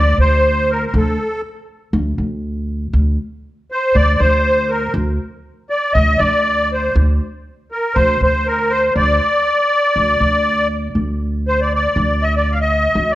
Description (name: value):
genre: Arabic maqam ensemble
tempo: 120 BPM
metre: 4/4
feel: straight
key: D maqam bayati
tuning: A4 = 439 Hz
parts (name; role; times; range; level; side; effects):
- musette accordion; melody; 0.0-13.2 s; A4 to F5; -15 LUFS; equal; none
- upright bass; bass; 0.0-13.2 s; D2; -17 LUFS; equal; none
room: light reverb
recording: worn, warbling old tape, cassette tape, warbly pitch drift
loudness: -14 LUFS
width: side -15 dB against mid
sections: 0.0-11.0 A section; 11.0-13.2 B section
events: none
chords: none